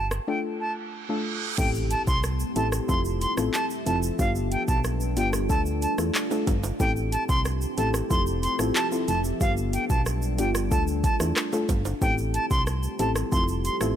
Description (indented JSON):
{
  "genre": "dancehall",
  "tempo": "92 BPM",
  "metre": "4/4",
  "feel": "straight",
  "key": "A minor",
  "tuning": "A4 = 437 Hz",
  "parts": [
    { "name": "bright silver concert flute", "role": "melody", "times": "0.0-13.8 s", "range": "F5 to C6", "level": "-29 LUFS", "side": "right 1 dB", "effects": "ping-pong delay" },
    { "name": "solid FM bass", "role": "bass", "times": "0.0-13.9 s", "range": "F1 to E2", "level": "-28 LUFS", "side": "equal", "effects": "none" },
    { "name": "afro-pop drum kit", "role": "drums", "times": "0.1-14.0 s", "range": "crash cymbal, handclaps, hi-hat, kick drum, rim click, shaker", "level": "-28 LUFS", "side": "equal", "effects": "overdrive" },
    { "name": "soft round pluck", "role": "accompaniment", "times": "0.3-14.0 s", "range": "A3 to A4", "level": "-30 LUFS", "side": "left 3 dB", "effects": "chorus, sidechain pumping" },
    { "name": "reverse cymbal and impact", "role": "sound effects", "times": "0.7-4.2 s", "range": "none", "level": "-35 LUFS", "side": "right 4 dB", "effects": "none" },
    { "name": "deep dark ambient pad", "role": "sustained chords", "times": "2.1-14.0 s", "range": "F3 to E5", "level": "-33 LUFS", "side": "right 1 dB", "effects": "chorus, built-in reverb, sidechain pumping" },
    { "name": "tube shaker and timbales", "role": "percussion", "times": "1.6-14.0 s", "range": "none", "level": "-39 LUFS", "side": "right 7 dB", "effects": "none" }
  ],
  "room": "digital ambience",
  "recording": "none",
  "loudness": "-23 LUFS",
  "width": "side -10 dB against mid",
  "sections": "0.0-1.6 A section; 1.6-14.0 B section",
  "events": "reverse cymbal 0.7-1.6; impact 1.6-4.2",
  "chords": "0.3 Dm; 1.6 Am7; 2.9 Fmaj7; 4.2 G7; 5.5 Dm; 6.8 Am7; 8.1 Fmaj7; 9.4 G7; 10.7 Dm; 12.0 Am7; 13.3 Fmaj7"
}